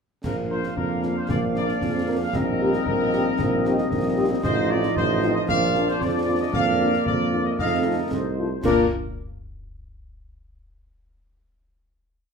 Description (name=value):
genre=military-style march for wind band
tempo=114 BPM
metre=2/4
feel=straight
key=Bb major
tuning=A4 = 438 Hz
part: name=warm trumpet section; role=melody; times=0.2-8.9 s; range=Bb4 to F5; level=-27 LUFS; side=equal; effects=none
part: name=clear woodwind section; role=second line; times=0.2-8.9 s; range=Bb3 to F5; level=-28 LUFS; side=left 4 dB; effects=none
part: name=warm trombone section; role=sustained chords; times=0.2-8.9 s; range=F3 to Eb4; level=-28 LUFS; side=right 2 dB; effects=none
part: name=warm tuba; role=bass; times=0.2-8.9 s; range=A1 to Bb2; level=-25 LUFS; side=right 3 dB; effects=none
part: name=concert snare drum, clash cymbals and concert bass drum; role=drums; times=0.2-8.9 s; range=none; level=-30 LUFS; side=equal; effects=none
part: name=mellow French horn section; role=accompaniment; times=0.5-8.9 s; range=A3 to Bb4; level=-28 LUFS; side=left 4 dB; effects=none
room=wet large studio reverb, RT60 0.8 s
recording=minimal, uncompressed stereo recording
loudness=-20 LUFS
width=side -5 dB against mid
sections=0.2-8.6 A section; 8.6-9.7 final chord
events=none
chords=0.2 Bb; 2.3 Cm7/Bb; 4.4 F7/A; 5.5 Bb; 6.5 Bb/F; 7.6 F7; 8.6 Bb